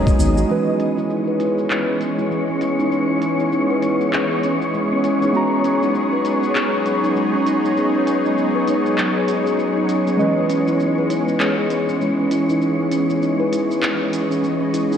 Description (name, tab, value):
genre	organic downtempo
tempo	99 BPM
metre	4/4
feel	swing 59% on 16ths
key	C# dorian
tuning	A4 = 440 Hz
part	muted felt-like synth keys	accompaniment	0.0-15.0 s	E3 to A#5	-26 LUFS	right 2 dB	chorus, sidechain pumping, cassette tape, analog delay, shimmer reverb
part	bowed-like drone	sustained chords	0.0-15.0 s	D#3 to D#5	-22 LUFS	left 1 dB	built-in reverb, sidechain pumping, cassette tape, shimmer reverb
part	steel tongue drum	arpeggios	0.0-15.0 s	G#3 to B4	-21 LUFS	equal	low-pass filter, cassette tape, analog delay, shimmer reverb
part	wind-like tuned noise texture	texture	0.0-15.0 s	C#4 to D#5	-24 LUFS	left 1 dB	built-in reverb, cassette tape, shimmer reverb
part	organic electronic drum kit	drums	0.1-15.0 s	handclaps, hi-hat, shaker	-27 LUFS	equal	low-pass filter on perc, cassette tape, low-pass filter on toms, low-pass filter on snare, low-pass filter on hats, low-pass filter on room
room	wet lush hall reverb, RT60 2.7 s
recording	home recording on cassette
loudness	-16 LUFS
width	side -8 dB against mid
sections	0.5-15.0 A section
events	none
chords	0.5 C#m7; 5.3 G#m7; 10.2 C#m7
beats	| 0.49 1.10 1.71 2.31 | 2.92 3.53 4.13 4.74 | 5.34 5.95 6.56 7.16 | 7.77 8.37 8.98 9.59 | 10.19 10.80 11.40 12.01 | 12.62 13.22 13.83 14.44